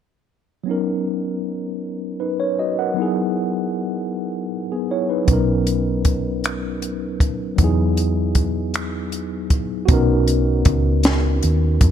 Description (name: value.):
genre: slow six-eight R&B.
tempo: 52 BPM (dotted quarters).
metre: 6/8.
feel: straight.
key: B major.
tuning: A4 = 440 Hz.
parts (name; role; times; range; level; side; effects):
mellow tine electric piano; accompaniment; 0.6-11.9 s; F#3 to F#5; -21 LUFS; left 1 dB; medium stereo tremolo.
hollow-body short-scale fingered electric bass; bass; 5.3-11.9 s; B1 to E#2; -20 LUFS; equal; none.
compact cocktail drum kit; drums; 5.3-11.9 s; finger snaps, hi-hat, kick drum, snare drum; -18 LUFS; equal; none.
room: light reverb.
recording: none.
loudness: -18 LUFS.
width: side -9 dB against mid.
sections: 0.7-9.9 A section; 9.9-11.9 B section.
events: none.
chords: 0.7 Bmaj9; 3.0 Emaj7; 5.3 Bmaj9; 7.6 Emaj7; 9.9 Bmaj9.